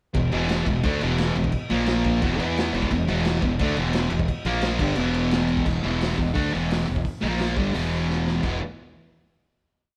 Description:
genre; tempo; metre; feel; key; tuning
garage rock duo or trio; 174 BPM; 4/4; straight; unclear; A4 = 442 Hz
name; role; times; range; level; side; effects
thick fuzz guitar; riff; 0.1-8.6 s; E2 to E4; -26 LUFS; equal; distortion
fuzz fingered electric bass; bass; 0.1-8.6 s; E1 to E2; -30 LUFS; equal; overdrive
crunchy breakbeat drum kit; drums; 0.1-8.5 s; crash cymbal, hi-hat, kick drum, snare drum; -30 LUFS; equal; none
room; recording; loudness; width
moderate stone room reverb, RT60 1.3 s; band playing live in one room; -24 LUFS; mono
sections
0.1-5.7 riff; 5.7-8.4 outro; 8.4-9.8 final chord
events
drum fill 8.1-8.4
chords
0.1 E5; 1.7 A#5; 2.2 E5; 4.5 A#5; 4.8 E5; 7.2 A#5; 7.6 E5

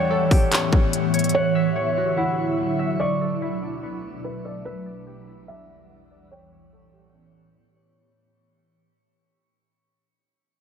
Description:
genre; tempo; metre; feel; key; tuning
hip hop, atmospheric cloud-rap; 145 BPM; 4/4; half-time; unclear; A4 = 440 Hz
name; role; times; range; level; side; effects
felt-muted upright piano; melody; 0.0-7.5 s; B4 to F#5; -27 LUFS; equal; low-pass filter, digital delay
ethereal airy pad; sustained chords; 0.0-8.0 s; D2 to F#5; -25 LUFS; right 1 dB; ensemble chorus, built-in reverb, phaser, sidechain pumping, low-pass filter
concert harp; arpeggios; 0.0-10.0 s; B3 to C#6; -28 LUFS; left 2 dB; low-pass filter, digital delay
trap drum kit; drums; 0.3-1.3 s; handclaps, hi-hat, kick drum; -20 LUFS; equal; none
room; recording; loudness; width
moderate shimmer reverb, RT60 5.3 s; none; -20 LUFS; side -7 dB against mid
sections
0.0-8.0 A section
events
fade-out 0.0-8.0; filter sweep 0.0-8.0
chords
0.0 A7; 1.3 Dmaj9; 3.0 Bm11; 4.7 Em7; 6.3 A7

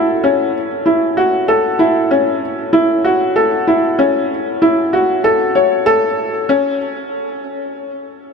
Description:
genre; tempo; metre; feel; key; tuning
electronica; 96 BPM; 4/4; straight; unclear; A4 = 441 Hz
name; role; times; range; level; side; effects
felt-muted upright piano; solo; 0.0-8.3 s; C#4 to C#5; -13 LUFS; left 1 dB; none
room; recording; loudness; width
moderate huge ambient reverb, RT60 6.3 s; none; -12 LUFS; side -5 dB against mid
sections
0.0-6.5 A section; 6.5-8.3 B section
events
drop 0.0-6.5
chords
none

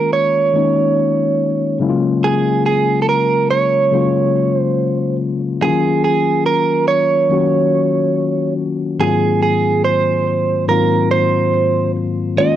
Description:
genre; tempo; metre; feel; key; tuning
R&B; 71 BPM; 4/4; straight; unclear; A4 = 442 Hz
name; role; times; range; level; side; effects
direct-recorded clean electric guitar; melody; 0.0-12.6 s; Ab4 to Eb5; -16 LUFS; right 5 dB; cassette tape
mellow tine electric piano; accompaniment; 0.0-12.6 s; Ab2 to Gb4; -17 LUFS; left 4 dB; medium stereo tremolo, cassette tape
room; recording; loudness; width
light reverb; home recording on cassette; -13 LUFS; side -11 dB against mid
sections
0.0-12.4 A section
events
none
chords
0.0 Db69; 1.8 Gbmaj9/Db; 5.6 Ebm11; 9.0 Ab13

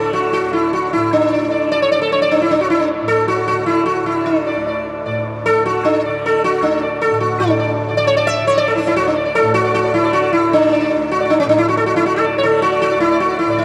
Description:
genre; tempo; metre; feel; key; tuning
indian classical; 154 BPM; 4/4; straight; D raga hamsadhwani; A4 = 439 Hz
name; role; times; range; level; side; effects
sitar; melody; 0.0-13.6 s; C#4 to E5; -16 LUFS; equal; none
tanpura; drone; 0.0-13.6 s; D2 to D3; -28 LUFS; equal; none
room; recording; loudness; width
wet huge ambient reverb, RT60 8.0 s; in a vast, echoing space; -16 LUFS; mono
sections
0.0-7.4 A section; 7.4-13.6 B section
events
speeding up 0.0-13.6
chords
none

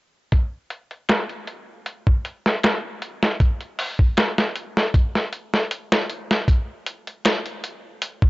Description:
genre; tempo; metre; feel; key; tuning
trip hop; 78 BPM; 4/4; swing 53% on 16ths; none; none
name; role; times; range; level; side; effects
dusty soul sampler-style drum kit; drums; 0.3-8.3 s; hi-hat, kick drum, snare drum; -19 LUFS; equal; low-pass filter on hats, low-pass filter on kick, low-pass filter on snare
room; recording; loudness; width
little or no reverb; dry, gritty hardware recording, nothing above 7.9 kHz; -20 LUFS; side -20 dB against mid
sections
0.3-8.3 A section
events
none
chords
none

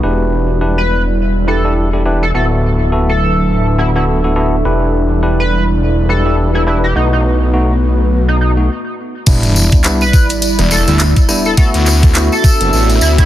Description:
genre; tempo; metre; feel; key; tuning
glitch hop; 104 BPM; 4/4; swing 58% on 16ths; E minor; A4 = 440 Hz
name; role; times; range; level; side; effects
dark analog pad; sustained chords; 0.6-13.3 s; F#3 to E5; -22 LUFS; equal; chorus, sidechain pumping
bell-like tine electric piano; stabs; 0.0-13.3 s; G3 to B4; -19 LUFS; equal; sidechain pumping, low-pass filter, tape echo
phased detuned saw bass; bass; 0.0-13.3 s; D1 to D2; -14 LUFS; equal; phaser, tube saturation
warbly tape-like pad; texture; 0.0-13.3 s; B3 to E5; -21 LUFS; equal; chorus, built-in reverb, sidechain pumping
sync lead; melody; 0.8-13.3 s; D#4 to B4; -20 LUFS; right 1 dB; lush chorus, tape echo
drum and bass drum kit; drums; 9.3-13.3 s; crash cymbal, handclaps, hi-hat, rim click; -19 LUFS; equal; none
electronic kick drum; drums; 9.3-13.3 s; none; -10 LUFS; equal; none
tambourine; percussion; 9.3-13.3 s; none; -20 LUFS; left 2 dB; none
sub drop; sound effects; 9.3-11.6 s; none; -18 LUFS; equal; none
room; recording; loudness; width
little or no reverb; dense, heavily limited modern master; -10 LUFS; side -13 dB against mid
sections
0.0-9.3 A section; 9.3-13.3 B section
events
filter sweep on analog synth pad 0.0-9.3; stop 8.7-9.3; drop 9.3-13.3; impact 9.3-11.6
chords
0.0 Em7; 2.3 D69; 4.7 Em7; 7.0 B7; 9.3 Em7; 11.6 D69

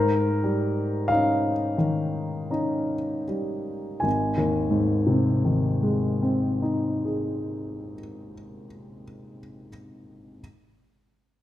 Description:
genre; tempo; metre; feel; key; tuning
classical, romantic nocturne for solo piano; 36-48 BPM; 3/4; rubato; Ab major; A4 = 440 Hz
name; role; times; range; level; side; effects
warm grand piano; solo; 0.0-10.4 s; Ab1 to Ab5; -24 LUFS; left 1 dB; none
room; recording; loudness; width
moderate recital hall reverb, RT60 1.6 s; faint mains hum; -22 LUFS; side -13 dB against mid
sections
0.0-4.0 A section; 4.0-8.2 B section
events
slowing down 0.0-4.0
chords
0.0 Eb7/Ab; 4.0 Ab

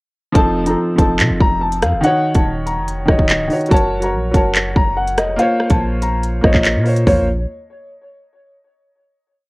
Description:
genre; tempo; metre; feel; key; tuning
hip hop, drill; 143 BPM; 4/4; half-time; Bb harmonic minor; A4 = 440 Hz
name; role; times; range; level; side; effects
felt-muted upright piano; accompaniment; 0.3-7.3 s; Eb3 to Db5; -19 LUFS; equal; low-pass filter
dark grand piano; melody; 0.4-7.3 s; Db5 to Bb5; -20 LUFS; left 1 dB; low-pass filter
long sustained 808-style bass; bass; 0.4-7.5 s; Db1 to C3; -21 LUFS; equal; none
drill drum kit; drums; 0.4-7.2 s; handclaps, hi-hat, kick drum, rim click, toms; -15 LUFS; equal; none
room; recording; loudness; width
little or no reverb; worn, warbling old tape, cassette tape, warbly pitch drift; -13 LUFS; side -24 dB against mid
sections
0.4-7.1 hook; 7.1-8.7 final chord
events
none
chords
0.4 F7; 2.0 Ebm7; 3.7 Gb; 5.4 Bbmadd9

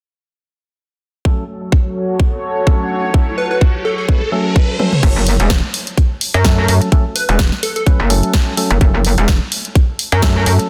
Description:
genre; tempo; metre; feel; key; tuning
bass house; 127 BPM; 4/4; swing 56% on 16ths; F# minor; A4 = 441 Hz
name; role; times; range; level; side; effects
sweeping resonant pad; sustained chords; 1.2-5.0 s; F#3 to C#5; -24 LUFS; equal; chorus, sidechain pumping
percussive organ stab; stabs; 1.2-10.7 s; F#3 to B4; -24 LUFS; equal; chorus, sidechain pumping, dub echo
riser; sound effects; 2.1-5.0 s; none; -28 LUFS; equal; none
electronic kick drum; drums; 1.3-10.3 s; none; -15 LUFS; equal; studio reverb
plucky unison lead; melody; 3.4-4.0, 7.2-7.8 s; A4 to B4; -24 LUFS; equal; phaser, lush chorus, dub echo
house drum kit; drums; 4.8-10.7 s; crash cymbal, hi-hat, snare drum, toms; -22 LUFS; equal; studio reverb
metallic wobble bass; bass; 5.0-10.6 s; E1 to F#2; -15 LUFS; equal; chorus, overdrive, sidechain pumping
room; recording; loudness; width
light reverb, digital ambience; dense, heavily limited modern master; -15 LUFS; mono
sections
1.3-5.0 A section; 5.0-10.7 B section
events
riser 2.4-5.0; drum fill 4.8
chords
1.3 F#m

